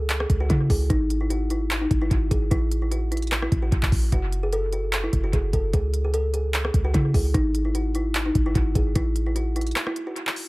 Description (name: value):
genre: hip hop, trap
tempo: 149 BPM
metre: 4/4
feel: half-time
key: unclear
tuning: A4 = 442 Hz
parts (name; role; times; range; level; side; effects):
- kalimba; melody; 0.0-10.5 s; D#4 to A4; -27 LUFS; equal; analog delay
- clean 808-style bass; bass; 0.0-9.7 s; F#1 to C#3; -24 LUFS; equal; none
- trap drum kit; drums; 0.1-10.5 s; handclaps, hi-hat, kick drum, rim click; -24 LUFS; equal; none
room: little or no reverb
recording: echo-heavy mix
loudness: -21 LUFS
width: side -22 dB against mid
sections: 0.0-10.5 A section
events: break 9.8-10.5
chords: 0.0 C#m; 0.9 Emaj9/G#; 2.5 F#m7/A; 4.1 F#m; 5.7 C#5; 7.3 Emaj9/G#; 9.0 F#m7/A